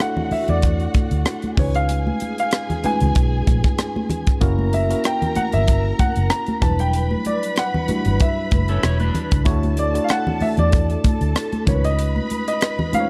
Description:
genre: lush 1970s-style soul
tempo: 95 BPM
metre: 4/4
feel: swing 54% on 16ths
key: unclear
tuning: A4 = 440 Hz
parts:
  - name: warm baby grand piano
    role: melody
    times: 0.0-13.1 s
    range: C#5 to A#5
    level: -27 LUFS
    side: equal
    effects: none
  - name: warm studio violin section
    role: second line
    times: 0.0-13.1 s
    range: F#4 to B5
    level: -33 LUFS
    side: equal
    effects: none
  - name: mellow tine electric piano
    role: accompaniment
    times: 0.0-13.1 s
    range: F#3 to D5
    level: -29 LUFS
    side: equal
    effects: overdrive
  - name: tight funk drum kit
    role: drums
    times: 0.0-13.1 s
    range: hi-hat, kick drum, rim click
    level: -22 LUFS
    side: equal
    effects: none
  - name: congas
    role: percussion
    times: 0.2-13.1 s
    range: none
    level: -29 LUFS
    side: equal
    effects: none
  - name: vintage muted fingered electric bass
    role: bass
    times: 0.3-13.0 s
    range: E1 to E2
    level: -23 LUFS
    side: equal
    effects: none
  - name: electric guitar through a small old amp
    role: riff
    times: 8.7-9.4 s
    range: C#4 to C#5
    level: -31 LUFS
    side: equal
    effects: none
room: light reverb, small room ambience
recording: dark, warm production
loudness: -20 LUFS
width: mono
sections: 0.0-13.1 A section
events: none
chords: 0.0 Dmaj7; 1.6 C#7; 4.4 F#7; 6.6 Em7; 9.5 Dmaj7; 11.7 C#7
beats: 0.00 0.63 1.26 | 1.89 2.52 3.15 3.79 | 4.42 5.05 5.68 6.31 | 6.94 7.57 8.20 8.84 | 9.47 10.10 10.73 11.36 | 11.99 12.62

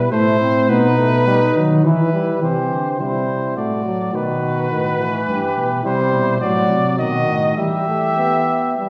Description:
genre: classical, imitative canzona for brass ensemble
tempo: 104 BPM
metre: 3/4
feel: straight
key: E minor from 5.8 s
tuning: A4 = 440 Hz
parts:
  - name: mellow trumpet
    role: melody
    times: 0.0-8.9 s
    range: B4 to E5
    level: -23 LUFS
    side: equal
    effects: none
  - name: mellow flugelhorn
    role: second line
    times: 0.0-8.9 s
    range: D#4 to G4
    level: -25 LUFS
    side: equal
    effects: none
  - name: dark tuba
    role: bass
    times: 0.0-8.9 s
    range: G2 to E3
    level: -23 LUFS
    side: equal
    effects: none
  - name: clear euphonium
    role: accompaniment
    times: 0.1-8.9 s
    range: D#3 to C4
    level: -24 LUFS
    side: equal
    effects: none
room: wet recital hall reverb, RT60 1.4 s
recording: heard from further back in the room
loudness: -18 LUFS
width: mono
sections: 0.0-2.4 A section; 2.4-8.9 B section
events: none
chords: 0.1 Am; 0.7 B; 1.8 Em; 2.4 C; 3.6 D/A; 4.1 B; 5.3 Em/G; 5.8 C; 6.4 F#dim/A; 7.0 B; 7.6 Em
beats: 0.12 | 0.69 1.27 1.84 | 2.42 3.00 3.57 | 4.14 4.71 5.27 | 5.84 6.41 6.99 | 7.58 8.18 8.78

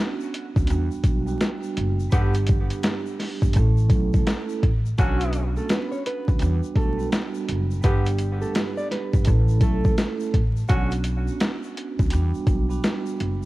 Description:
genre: hip hop, boom-bap hip-hop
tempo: 84 BPM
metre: 4/4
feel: swing 63% on 16ths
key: unclear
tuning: A4 = 441 Hz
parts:
  - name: vibraphone with soft mallets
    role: accompaniment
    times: 0.0-13.5 s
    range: G3 to A4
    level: -29 LUFS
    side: right 5 dB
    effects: high-pass filter, low-pass filter, cassette tape
  - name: egg shaker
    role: percussion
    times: 0.2-13.5 s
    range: none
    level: -50 LUFS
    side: left 11 dB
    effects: none
  - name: boom bap sampler-style drum kit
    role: drums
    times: 0.3-13.4 s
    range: hi-hat, kick drum, snare drum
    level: -22 LUFS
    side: equal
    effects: overdrive, cassette tape
  - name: upright bass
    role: bass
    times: 0.6-13.5 s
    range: F#1 to E2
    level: -24 LUFS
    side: equal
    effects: none
  - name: warm saxophone section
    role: stabs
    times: 2.1-10.9 s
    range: D3 to G4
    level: -33 LUFS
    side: left 1 dB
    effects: high-pass filter, low-pass filter, cassette tape, tape echo
  - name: nylon-string guitar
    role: melody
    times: 5.0-9.9 s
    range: F#3 to D5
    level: -31 LUFS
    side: equal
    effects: high-pass filter, low-pass filter, cassette tape, tape echo
room: little or no reverb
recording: home recording on cassette, vinyl crackle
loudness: -20 LUFS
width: side -18 dB against mid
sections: 0.0-13.5 A section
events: none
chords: 0.0 Bmadd9; 0.7 Em7; 2.1 G; 3.6 A; 5.0 Bmadd9; 6.4 Em7; 7.8 G; 9.3 A; 10.7 Bmadd9; 12.1 Em7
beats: 0.70 1.41 | 2.12 2.84 3.55 4.27 | 4.98 5.70 6.41 7.12 | 7.84 8.55 9.27 9.98 | 10.70 11.41 12.12 12.84

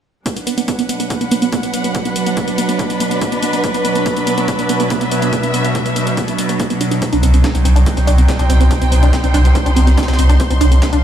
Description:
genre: driving peak-time techno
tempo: 142 BPM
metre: 4/4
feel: straight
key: B phrygian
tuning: A4 = 440 Hz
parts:
  - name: tight sequenced synth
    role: riff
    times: 0.3-11.0 s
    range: B3 to D4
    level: -20 LUFS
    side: right 2 dB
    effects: chorus, phaser, sidechain pumping, digital delay
  - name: overtone-sweeping drone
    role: drone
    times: 0.6-11.0 s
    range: B2 to F#3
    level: -21 LUFS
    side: right 2 dB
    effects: chorus, built-in reverb, sidechain pumping
  - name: electronic hi-hat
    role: drums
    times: 0.3-11.0 s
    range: none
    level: -26 LUFS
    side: left 1 dB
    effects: overdrive
  - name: electronic kick drum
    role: drums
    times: 0.3-10.9 s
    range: none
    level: -23 LUFS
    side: equal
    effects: high-pass filter on kick
  - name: dark chamber string section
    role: texture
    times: 0.3-11.0 s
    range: D4 to C6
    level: -21 LUFS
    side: equal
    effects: sidechain pumping
  - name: breakbeat sampler-style drum kit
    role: drums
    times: 7.0-10.9 s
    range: hi-hat, snare drum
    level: -30 LUFS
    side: equal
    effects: none
  - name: saturated sub bass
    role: bass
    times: 7.1-11.0 s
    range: C2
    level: -11 LUFS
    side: equal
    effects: overdrive, sidechain pumping, low-pass filter
room: little or no reverb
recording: played on a big sound system in a bare room, stone room reverb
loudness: -12 LUFS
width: side -10 dB against mid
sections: 0.3-11.0 A section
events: filter sweep on synth arpeggio sound 0.3-11.0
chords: 0.3 Bm; 7.0 Cm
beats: | 0.26 0.68 1.10 1.52 | 1.95 2.37 2.79 3.21 | 3.64 4.06 4.48 4.91 | 5.33 5.75 6.17 6.60 | 7.02 7.44 7.86 8.29 | 8.71 9.13 9.55 9.98 | 10.40 10.82

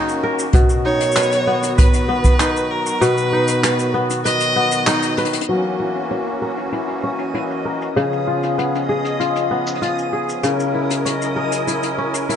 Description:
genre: folktronica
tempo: 97 BPM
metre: 4/4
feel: straight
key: unclear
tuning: A4 = 440 Hz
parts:
  - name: musette accordion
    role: sustained chords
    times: 0.0-12.4 s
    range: C#3 to A#4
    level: -25 LUFS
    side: equal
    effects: none
  - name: kora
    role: arpeggios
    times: 0.0-12.4 s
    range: B2 to B4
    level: -20 LUFS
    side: left 1 dB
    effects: low-pass filter, ping-pong delay
  - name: jazz brush drum kit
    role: drums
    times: 0.1-12.4 s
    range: handclaps, hi-hat, shaker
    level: -24 LUFS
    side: left 2 dB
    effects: low-pass filter on hats, low-pass filter on perc, low-pass filter on snare, low-pass filter on room
  - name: kick drum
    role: drums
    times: 0.5-2.4 s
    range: none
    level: -14 LUFS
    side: equal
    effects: none
  - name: rich violin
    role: melody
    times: 0.8-5.1 s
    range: A#4 to D#5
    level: -21 LUFS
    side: right 1 dB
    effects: ping-pong delay
  - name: backwards swelling texture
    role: texture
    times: 7.1-12.4 s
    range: D#5 to D#6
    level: -28 LUFS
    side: left 3 dB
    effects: built-in reverb
room: light reverb, studio reverb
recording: dark, warm production, nothing above 10.7 kHz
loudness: -16 LUFS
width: side -8 dB against mid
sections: 0.0-5.5 A section; 5.5-12.4 B section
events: kick drops out 4.3-5.5; band accent 4.9-5.2; drum fill 5.2-5.5; filter sweep on drum 5.5-12.4; filter sweep on kora 5.5-12.4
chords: 0.0 D#m7; 0.5 B; 5.5 F#7; 8.0 C#7; 10.4 F#7/C#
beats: | 0.54 1.16 1.78 2.40 | 3.02 3.63 4.25 4.87 | 5.49 6.11 6.73 7.34 | 7.96 8.58 9.20 9.82 | 10.44 11.06 11.68 12.29

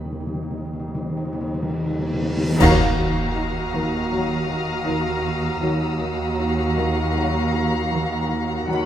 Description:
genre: cinematic, suspense film score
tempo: 79 BPM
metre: 4/4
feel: straight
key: Eb minor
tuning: A4 = 444 Hz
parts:
  - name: organ-like drone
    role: drone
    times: 0.0-8.9 s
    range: Eb2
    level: -30 LUFS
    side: right 1 dB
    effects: ensemble chorus, built-in reverb
  - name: timpani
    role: percussion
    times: 0.0-3.7, 8.7-8.9 s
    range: Eb3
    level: -25 LUFS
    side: left 1 dB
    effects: none
  - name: reverse cymbal and impact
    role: sound effects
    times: 2.3-5.6 s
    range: none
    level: -30 LUFS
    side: equal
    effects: none
  - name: muted chamber violin section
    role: melody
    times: 2.6-8.9 s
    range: Bb5 to B5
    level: -30 LUFS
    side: left 2 dB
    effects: none
  - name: muted chamber violin section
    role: second line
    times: 2.6-8.9 s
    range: F5 to F#5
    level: -30 LUFS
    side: left 4 dB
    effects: none
  - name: muted chamber viola section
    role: accompaniment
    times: 2.6-8.9 s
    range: Gb4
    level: -28 LUFS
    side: right 3 dB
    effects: none
  - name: dark French horn section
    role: sustained chords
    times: 2.6-8.9 s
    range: Gb3 to Gb4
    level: -28 LUFS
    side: left 3 dB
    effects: none
  - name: muted symphonic cello section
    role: riff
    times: 2.6-8.9 s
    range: Eb3 to Eb4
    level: -28 LUFS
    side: equal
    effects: none
  - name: muted chamber double bass section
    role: bass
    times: 2.6-8.9 s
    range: Eb2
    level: -27 LUFS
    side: right 2 dB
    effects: none
  - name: muted studio cello section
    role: bass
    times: 2.6-8.9 s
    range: Eb2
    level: -28 LUFS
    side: right 1 dB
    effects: none
  - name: clash cymbals and concert bass drum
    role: percussion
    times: 2.6-4.1 s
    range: none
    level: -29 LUFS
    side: equal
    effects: none
  - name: felt-muted upright piano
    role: texture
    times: 2.6-8.7 s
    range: F5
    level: -32 LUFS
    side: left 2 dB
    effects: none
  - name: muted chamber violin section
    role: texture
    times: 2.6-8.9 s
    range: Bb5 to F#6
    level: -35 LUFS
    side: left 2 dB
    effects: none
room: moderate scoring stage reverb, RT60 1.7 s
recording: none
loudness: -20 LUFS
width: side -10 dB against mid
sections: 0.0-2.6 A section; 2.6-8.9 B section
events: break 0.0-2.6; timpani fill 0.0-2.6; reverse cymbal 2.3; band accent 2.6-3.4; impact 2.6-5.6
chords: 0.0 N.C.; 2.6 Ebmadd9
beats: 0.32 1.08 1.84 | 2.60 3.36 4.12 4.88 | 5.64 6.40 7.16 7.92 | 8.68

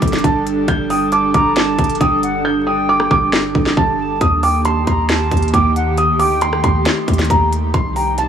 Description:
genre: hip hop, trap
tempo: 136 BPM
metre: 4/4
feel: half-time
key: G minor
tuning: A4 = 440 Hz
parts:
  - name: felt-muted upright piano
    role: melody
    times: 0.0-8.3 s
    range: A5 to G6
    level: -18 LUFS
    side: right 1 dB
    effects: low-pass filter, tape echo
  - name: airy breathy pad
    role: sustained chords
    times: 0.0-8.3 s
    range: C3 to A4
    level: -20 LUFS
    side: right 1 dB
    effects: chorus
  - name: clean 808-style bass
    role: bass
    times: 0.0-8.3 s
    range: G1 to Eb2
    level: -21 LUFS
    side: right 1 dB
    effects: none
  - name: trap drum kit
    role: drums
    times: 0.0-8.3 s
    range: hi-hat, kick drum, rim click, snare drum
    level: -18 LUFS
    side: equal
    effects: none
  - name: silver concert flute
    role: second line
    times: 0.9-8.3 s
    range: F#5 to Bb5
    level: -24 LUFS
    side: right 1 dB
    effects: tape echo
room: light reverb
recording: vinyl crackle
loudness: -13 LUFS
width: side -8 dB against mid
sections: 0.0-8.3 A section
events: hi-hats muted 2.4-4.2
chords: 0.0 Gsus2; 4.2 Eb; 7.7 Cm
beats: 0.24 | 0.68 1.12 1.56 2.00 | 2.45 2.89 3.33 3.77 | 4.21 4.65 5.09 5.54 | 5.98 6.42 6.86 7.30 | 7.74 8.18

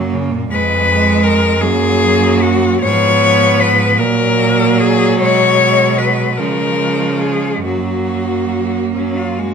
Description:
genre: classical, lyrical piece for cello ensemble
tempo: 51 BPM (dotted quarters)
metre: 6/8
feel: uneven beats, rubato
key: F# major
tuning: A4 = 441 Hz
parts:
  - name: clear cello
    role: second line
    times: 0.0-9.5 s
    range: G#3 to Cb4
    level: -18 LUFS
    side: right 12 dB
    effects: none
  - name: rich cello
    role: accompaniment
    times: 0.0-9.5 s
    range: A#2 to G#3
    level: -20 LUFS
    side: left 1 dB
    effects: none
  - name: rich cello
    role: bass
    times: 0.0-9.5 s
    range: F2 to C#3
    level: -19 LUFS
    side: right 2 dB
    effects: none
  - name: rich cello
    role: melody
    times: 0.5-9.5 s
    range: C#4 to C#5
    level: -14 LUFS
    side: left 5 dB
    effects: none
room: moderate recital hall reverb, RT60 1.5 s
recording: none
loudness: -11 LUFS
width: side -6 dB against mid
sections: 0.0-9.5 A section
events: none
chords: 0.0 F#; 0.5 Fdim; 1.6 F#; 2.8 Fdim/Ab; 4.0 F#/A#; 5.2 G#m/B; 6.4 C#; 7.6 F#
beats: | 0.51 1.61 | 2.83 3.98 | 5.20 6.38 | 7.64 8.94

